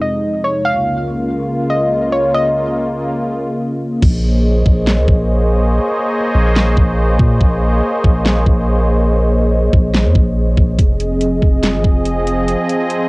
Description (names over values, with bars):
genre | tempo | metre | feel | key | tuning
hip hop, atmospheric cloud-rap | 142 BPM | 4/4 | half-time | Bb minor | A4 = 440 Hz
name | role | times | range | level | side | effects
soft round pluck | melody | 0.0-3.1 s | Db5 to F5 | -17 LUFS | equal | chorus, low-pass filter, cassette tape, tape echo
sweeping resonant pad | sustained chords | 0.0-13.1 s | Db2 to Eb5 | -17 LUFS | equal | chorus, sidechain pumping, low-pass filter, cassette tape
long sustained 808-style bass | bass | 4.0-12.6 s | F1 to Bb2 | -15 LUFS | equal | none
dubstep drum kit | drums | 4.0-13.0 s | crash cymbal, hi-hat, kick drum, snare drum | -14 LUFS | equal | cassette tape
room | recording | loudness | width
little or no reverb | home recording on cassette | -12 LUFS | side -24 dB against mid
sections
0.0-4.0 A section; 4.0-13.1 B section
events
filter sweep 0.0-4.0; hi-hats muted 4.0-10.8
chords
0.0 Fm7; 0.6 Db6; 4.0 Bbm11; 10.8 Fm7